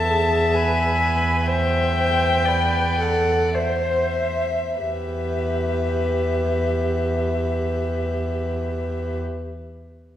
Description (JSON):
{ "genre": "classical, slow romantic movement for string quartet", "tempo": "47-68 BPM", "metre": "3/4", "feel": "rubato", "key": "E minor", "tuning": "A4 = 443 Hz", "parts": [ { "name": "dark violin", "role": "melody", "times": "0.0-9.2 s", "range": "E5 to A5", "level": "-25 LUFS", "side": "left 3 dB", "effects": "none" }, { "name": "warm violin", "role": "second line", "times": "0.0-9.2 s", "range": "B4 to E5", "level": "-26 LUFS", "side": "left 3 dB", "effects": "none" }, { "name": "warm viola", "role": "accompaniment", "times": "0.0-9.2 s", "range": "G4 to C5", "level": "-26 LUFS", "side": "right 1 dB", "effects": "none" }, { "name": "warm cello", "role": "bass", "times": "0.0-9.2 s", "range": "E2", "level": "-24 LUFS", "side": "right 2 dB", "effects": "none" } ], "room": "wet recital hall reverb, RT60 1.6 s", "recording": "heard from further back in the room", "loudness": "-19 LUFS", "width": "side -11 dB against mid", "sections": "0.0-4.8 A section; 4.8-8.4 B section", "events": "slowing down 0.0-4.8", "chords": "0.0 E; 1.5 Am/E; 4.8 Em" }